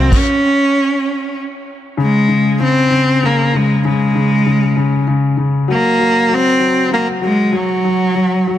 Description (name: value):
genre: pop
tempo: 65 BPM (dotted quarters)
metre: 6/8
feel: straight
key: unclear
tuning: A4 = 440 Hz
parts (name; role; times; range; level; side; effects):
- clear cello; melody; 0.0-8.6 s; Gb3 to Db4; -14 LUFS; equal; tape echo
- clear concert grand piano; accompaniment; 0.0-8.6 s; Db3 to Gb3; -16 LUFS; left 3 dB; none
room: light reverb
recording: dense, heavily limited modern master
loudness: -12 LUFS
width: side -11 dB against mid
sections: 0.0-2.0 A section; 2.0-8.6 A section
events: stop 0.1-2.0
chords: none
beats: | 0.12 1.05 | 1.98 2.91 | 3.84 4.77 | 5.69 6.61 | 7.54 8.47